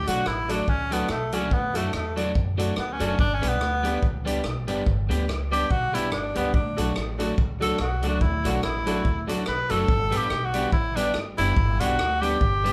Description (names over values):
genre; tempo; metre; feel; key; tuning
ska; 143 BPM; 4/4; swing 56% on 8ths; D major; A4 = 442 Hz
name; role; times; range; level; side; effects
breathy tenor saxophone; melody; 0.0-12.7 s; A3 to B4; -29 LUFS; equal; none
upright bass; bass; 0.0-12.7 s; F#1 to F#2; -31 LUFS; equal; none
electric guitar at the edge of break-up; accompaniment; 0.1-12.7 s; F#3 to G4; -33 LUFS; equal; none
bright upright piano; stabs; 0.1-12.7 s; D4 to D5; -35 LUFS; equal; none
swinging big-band drum kit; drums; 0.1-12.7 s; hi-hat, kick drum, rim click; -30 LUFS; equal; none
room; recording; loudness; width
moderate large studio reverb, RT60 0.8 s; band playing live in one room, lossy compression artefacts; -25 LUFS; mono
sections
0.0-12.7 A section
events
tenor saxophone solo 0.0-12.7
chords
0.0 D; 3.2 G; 6.5 D; 9.9 G